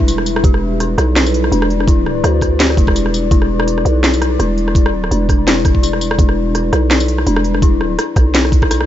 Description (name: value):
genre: half-time drum and bass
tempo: 167 BPM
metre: 4/4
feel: swing 55% on 16ths, half-time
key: E minor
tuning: A4 = 441 Hz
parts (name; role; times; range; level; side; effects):
- dark analog pad; sustained chords; 0.0-8.9 s; G3 to E5; -23 LUFS; left 1 dB; chorus, phaser, sidechain pumping
- dark detuned synth bell; arpeggios; 0.0-8.9 s; D4 to G4; -20 LUFS; left 5 dB; chorus, ping-pong delay
- growling 808-style bass; bass; 0.0-8.9 s; E1 to D2; -16 LUFS; equal; none
- electronic kick drum; drums; 0.0-8.7 s; none; -13 LUFS; equal; none
- drum and bass drum kit; drums; 0.1-8.9 s; hi-hat, rim click, snare drum, tambourine; -18 LUFS; right 1 dB; none
room: little or no reverb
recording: nothing above 7.8 kHz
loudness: -12 LUFS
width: side -12 dB against mid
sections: 0.0-8.9 A section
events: drum fill 8.7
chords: 0.0 Em